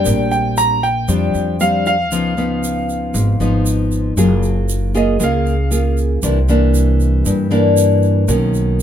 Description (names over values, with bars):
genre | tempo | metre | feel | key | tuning
bossa nova | 117 BPM | 4/4 | straight | unclear | A4 = 440 Hz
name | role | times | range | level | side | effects
warm grand piano | melody | 0.0-6.0 s | D#5 to Bb5 | -20 LUFS | right 2 dB | none
nylon-string guitar | accompaniment | 0.0-8.8 s | G2 to G#4 | -17 LUFS | left 2 dB | none
upright bass | bass | 0.0-8.8 s | F#1 to G2 | -17 LUFS | equal | none
egg shaker | percussion | 0.1-8.8 s | none | -28 LUFS | right 6 dB | none
room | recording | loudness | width
little or no reverb | close, detailed microphones | -13 LUFS | side -10 dB against mid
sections
0.0-4.2 A section; 4.2-8.8 B section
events
grand piano solo 4.2-8.8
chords
0.1 Bb69; 2.1 Db9; 4.2 F#maj9; 6.2 C9; 8.3 Bmaj9